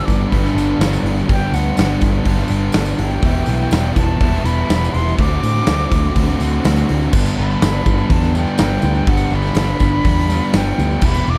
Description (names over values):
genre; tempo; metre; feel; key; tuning
rock, shoegaze and dream pop; 123 BPM; 4/4; straight; G major; A4 = 440 Hz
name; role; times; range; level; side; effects
silver concert flute; melody; 0.0-11.4 s; F#5 to D6; -28 LUFS; equal; analog delay
biting overdriven guitar; riff; 0.0-11.4 s; G2 to F#4; -25 LUFS; equal; reverse reverb
raw garage guitar; riff; 0.0-11.4 s; G2 to G4; -27 LUFS; equal; none
thick fuzz guitar; riff; 0.0-11.4 s; E2 to D4; -26 LUFS; equal; distortion, subtle chorus
vintage muted fingered electric bass; bass; 0.1-11.4 s; E1 to A2; -22 LUFS; equal; none
huge arena drum kit; drums; 0.1-11.1 s; crash cymbal, hi-hat, kick drum, snare drum; -21 LUFS; equal; none
tambourine; percussion; 0.1-11.3 s; none; -41 LUFS; equal; none
room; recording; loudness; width
light reverb, small room ambience; dark, warm production; -16 LUFS; mono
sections
0.0-7.1 A section; 7.1-11.4 B section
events
none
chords
0.0 G; 3.2 Em; 5.2 D7; 7.1 G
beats
0.32 0.81 | 1.30 1.78 2.27 2.76 | 3.24 3.73 4.22 4.70 | 5.19 5.68 6.16 6.65 | 7.14 7.62 8.11 8.60 | 9.08 9.57 10.05 10.54 | 11.03